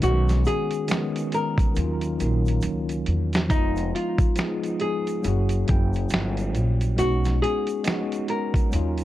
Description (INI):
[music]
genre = lo-fi hip hop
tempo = 69 BPM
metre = 4/4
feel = swing 61% on 16ths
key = unclear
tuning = A4 = 440 Hz
[part]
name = nylon-string guitar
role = melody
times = 0.0-9.0 s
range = Eb4 to Bb4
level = -28 LUFS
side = left 2 dB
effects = low-pass filter
[part]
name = tine electric piano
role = accompaniment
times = 0.0-9.0 s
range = D#3 to G5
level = -27 LUFS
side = equal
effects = medium stereo tremolo, low-pass filter
[part]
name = upright bass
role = bass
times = 0.0-9.0 s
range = F1 to Fb2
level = -24 LUFS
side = equal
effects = none
[part]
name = dusty soul sampler-style drum kit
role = drums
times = 0.0-9.0 s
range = finger snaps, hi-hat, kick drum, snare drum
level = -24 LUFS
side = equal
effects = overdrive
[part]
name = egg shaker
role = percussion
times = 0.0-9.0 s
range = none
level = -48 LUFS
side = right 6 dB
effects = none
[sound]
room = studio reverb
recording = cassette tape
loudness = -21 LUFS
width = side -14 dB against mid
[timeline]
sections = 0.0-3.5 A section; 3.5-9.0 A section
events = drum fill 1.8-3.5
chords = 0.0 B6; 1.8 Ebm9; 3.5 Fm7b5; 5.2 Gb7b9; 7.0 B6